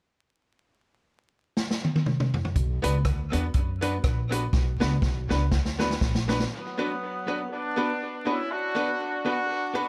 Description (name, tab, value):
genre	ska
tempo	122 BPM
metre	4/4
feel	swing 57% on 8ths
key	unclear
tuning	A4 = 441 Hz
part	vintage drum kit	drums	1.6-6.5 s	hi-hat, kick drum, rim click, snare drum, toms	-28 LUFS	equal	dub echo
part	upright bass	bass	2.6-6.4 s	Bb1 to F#2	-30 LUFS	equal	none
part	clean electric guitar	accompaniment	2.8-9.9 s	B3 to B4	-34 LUFS	equal	tremolo
part	bright upright piano	stabs	2.8-9.8 s	B3 to B4	-35 LUFS	equal	dub echo
part	warm horn section	melody	6.5-9.9 s	F#3 to F#4	-31 LUFS	equal	dub echo
room	light reverb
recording	vinyl crackle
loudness	-27 LUFS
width	mono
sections	0.6-2.6 A section; 2.6-6.5 B section; 6.5-9.9 C section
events	drum fill 1.6-2.6, 4.5-6.5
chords	0.6 N.C.; 2.6 Bm